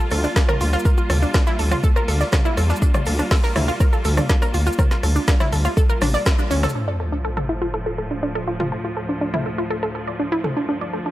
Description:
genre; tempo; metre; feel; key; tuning
melodic techno; 122 BPM; 4/4; straight; D minor; A4 = 441 Hz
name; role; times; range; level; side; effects
rich symphonic string section; sustained chords; 0.0-11.1 s; D2 to F4; -28 LUFS; equal; sidechain pumping, low-pass filter
wide unison pluck; arpeggios; 0.0-11.1 s; C#4 to D5; -24 LUFS; right 1 dB; sidechain pumping, tape echo
dark detuned saw bass; bass; 0.1-6.7 s; A1 to E2; -20 LUFS; equal; sidechain pumping
deep house drum kit; drums; 0.1-10.5 s; hi-hat, rim click, shaker, snare drum, toms; -25 LUFS; left 1 dB; none
gated 80s drum kit; drums; 0.1-6.8 s; hi-hat, shaker, snare drum; -36 LUFS; equal; sidechain pumping on hats, high-pass filter on hats, high-pass filter on snare, sidechain pumping on perc, high-pass filter on perc, high-pass filter on room
electronic kick drum; drums; 0.4-6.4 s; none; -18 LUFS; equal; none
sub drop; sound effects; 6.8-8.7 s; none; -28 LUFS; equal; none
room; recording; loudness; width
small room ambience; none; -18 LUFS; side -15 dB against mid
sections
0.0-6.8 A section; 6.8-11.1 B section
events
band accent 6.3; impact 6.8-8.7; filter sweep on string section 6.8-11.1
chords
0.0 Gm7/D; 6.8 Dm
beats
0.36 | 0.85 1.34 1.84 2.33 | 2.82 3.31 3.80 4.29 | 4.79 5.28 5.77 6.26 | 6.75 7.25 7.74 8.23 | 8.72 9.21 9.71 10.20 | 10.69

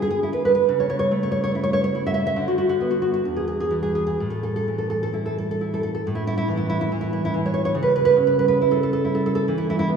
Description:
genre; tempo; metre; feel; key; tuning
romantic piece for solo classical guitar; 64-72 BPM; 2/4; rubato; A major; A4 = 436 Hz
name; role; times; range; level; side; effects
nylon-string guitar; solo; 0.0-10.0 s; E2 to E5; -20 LUFS; right 2 dB; none
room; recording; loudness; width
wet church reverb, RT60 2.9 s; recorded in a church or concert hall, small room ambience; -20 LUFS; side -6 dB against mid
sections
0.0-6.0 A section; 6.0-10.0 A section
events
none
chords
0.0 E5/D; 0.7 A/C#; 2.4 Bm/D; 3.3 N.C.; 4.2 A5; 7.7 C#m7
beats
| 0.68 1.54 | 2.38 3.26 | 4.18 5.12 | 6.04 6.90 | 7.74 8.61 | 9.48

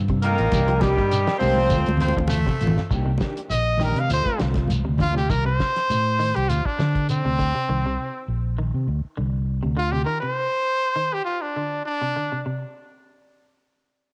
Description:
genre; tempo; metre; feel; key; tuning
afrobeat; 100 BPM; 4/4; swing 53% on 16ths; C dorian; A4 = 440 Hz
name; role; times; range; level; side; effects
semi-hollow electric guitar; arpeggios; 0.0-12.6 s; C3 to G3; -33 LUFS; equal; cassette tape
fingered electric bass; bass; 0.0-10.0 s; A1 to D3; -25 LUFS; equal; tube saturation
cloth-damped thuddy drum kit; drums; 0.1-7.5 s; hi-hat, kick drum, snare drum; -30 LUFS; equal; cassette tape
clear horn section; melody; 0.2-2.3 s; G3 to C5; -25 LUFS; equal; none
breathy tenor saxophone; second line; 0.2-2.3 s; Eb3 to F3; -35 LUFS; equal; cassette tape, analog delay
mellow electric guitar; stabs; 0.2-5.2 s; Eb3 to G4; -35 LUFS; equal; ensemble chorus, cassette tape
shekere; percussion; 0.2-7.5 s; none; -33 LUFS; equal; none
congas; percussion; 0.5-5.1 s; none; -29 LUFS; equal; none
growling baritone saxophone; second line; 2.0-2.9 s; A3 to C4; -34 LUFS; equal; cassette tape
brilliant trumpet; melody; 3.5-12.4 s; C4 to F5; -26 LUFS; equal; none
room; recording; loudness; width
moderate spring reverb, RT60 2.2 s; home recording on cassette; -23 LUFS; mono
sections
0.0-2.9 A section; 2.9-12.5 B section; 12.5-14.1 C section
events
drum fill 1.7-2.9; trumpet solo 2.9-12.5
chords
0.0 Dm7 (rootless); 0.5 Cm9; 1.7 Dm7; 2.9 Cm9; 4.1 Dm7; 5.3 Cm; 6.5 D7(no3); 7.7 Cm7; 8.9 Csus2; 10.1 Cm; 11.3 Csus2; 12.5 N.C.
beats
| 0.53 1.12 1.71 2.31 | 2.90 3.50 4.09 4.69 | 5.29 5.88 6.48 7.08 | 7.67 8.27 8.87 9.47 | 10.07 10.66 11.26 11.86 | 12.46

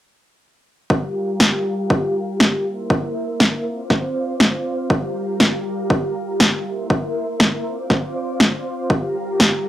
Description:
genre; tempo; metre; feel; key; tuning
filtered disco house; 120 BPM; 4/4; swing 54% on 16ths; G dorian; A4 = 440 Hz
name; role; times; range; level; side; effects
string machine, full ensemble; sustained chords; 0.9-9.7 s; G4 to D6; -24 LUFS; equal; ensemble chorus, sidechain pumping, low-pass filter, cassette tape
electronic kick drum; drums; 0.9-9.5 s; none; -20 LUFS; equal; high-pass filter on kick, studio reverb, high-pass filter on room
electronic snare drum; drums; 1.4-9.5 s; none; -14 LUFS; equal; studio reverb
room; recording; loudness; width
moderate booth ambience, RT60 0.2 s; home recording on cassette; -17 LUFS; side -13 dB against mid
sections
0.9-9.7 A section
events
filter sweep on string machine 0.9-9.7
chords
0.9 Gm7; 2.7 C7; 3.7 Dm7; 4.9 Gm7; 6.7 C7; 7.7 Dm7; 8.9 Gm7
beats
| 0.90 1.40 1.90 2.40 | 2.90 3.40 3.90 4.40 | 4.90 5.40 5.90 6.40 | 6.90 7.40 7.90 8.40 | 8.90 9.40

